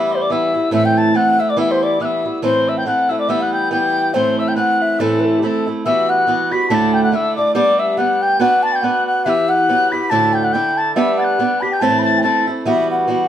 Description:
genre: celtic folk, Celtic polka.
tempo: 141 BPM.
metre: 2/4.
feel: swing 56% on 8ths.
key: A dorian.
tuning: A4 = 440 Hz.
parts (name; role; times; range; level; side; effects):
baroque flute; melody; 0.0-13.3 s; G4 to B5; -17 LUFS; left 2 dB; none.
tin whistle; second line; 0.0-12.5 s; A5 to B6; -21 LUFS; left 2 dB; none.
picked swing-style acoustic guitar; accompaniment; 0.0-13.3 s; D2 to B4; -18 LUFS; right 2 dB; none.
room: moderate studio reverb, RT60 0.8 s.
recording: band playing live in one room.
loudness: -14 LUFS.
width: side -10 dB against mid.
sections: 0.0-5.9 A section; 5.9-12.7 B section.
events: none.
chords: 0.0 Em; 0.7 Am; 1.6 Em; 2.4 Am; 3.3 Em; 4.1 Am; 5.9 Emadd9; 6.7 Dsus2; 7.6 G; 8.4 Bm; 9.3 Emadd9; 10.1 Dsus2; 11.0 G; 11.8 Am; 12.7 Emadd9.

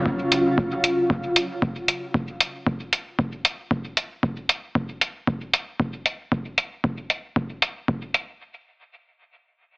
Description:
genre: dub techno.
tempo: 115 BPM.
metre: 4/4.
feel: swing 55% on 16ths.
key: none.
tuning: none.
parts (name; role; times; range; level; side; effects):
electronic kick drum; drums; 0.1-8.0 s; none; -26 LUFS; equal; none.
electronic hi-hat; drums; 0.3-8.3 s; none; -23 LUFS; equal; low-pass filter on hats, low-pass filter on room.
room: light reverb.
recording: heavily compressed radio sound, AM radio sound.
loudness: -22 LUFS.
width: side -25 dB against mid.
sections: 0.0-8.4 A section.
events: none.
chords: none.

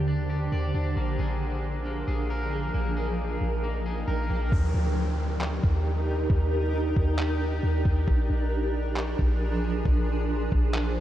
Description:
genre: hip hop, atmospheric cloud-rap.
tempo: 135 BPM.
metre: 4/4.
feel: half-time.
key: Eb major.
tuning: A4 = 440 Hz.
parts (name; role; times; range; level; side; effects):
granular cloud pad; sustained chords; 0.0-11.0 s; D3 to G5; -30 LUFS; right 1 dB; built-in reverb, sidechain pumping.
electric guitar at the edge of break-up; arpeggios; 0.0-4.5 s; Bb3 to D5; -38 LUFS; left 2 dB; lush chorus, diffuse ambient delay.
clean 808-style bass; bass; 0.0-11.0 s; Bb1 to Eb2; -27 LUFS; equal; none.
downlifter and swell; sound effects; 0.0-8.1 s; none; -44 LUFS; equal; none.
lo-fi sampler-style drum kit; drums; 4.5-10.8 s; handclaps, kick drum; -28 LUFS; equal; none.
room: moderate huge ambient reverb, RT60 7.7 s.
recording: dreamy mix soaked in reverb.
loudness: -24 LUFS.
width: side -12 dB against mid.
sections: 0.0-4.5 A section; 4.5-11.0 B section.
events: hi-hats muted 4.5-11.0.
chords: 0.0 Ebmaj7; 1.0 Bb7; 4.5 Ebmaj7; 8.1 Bb7.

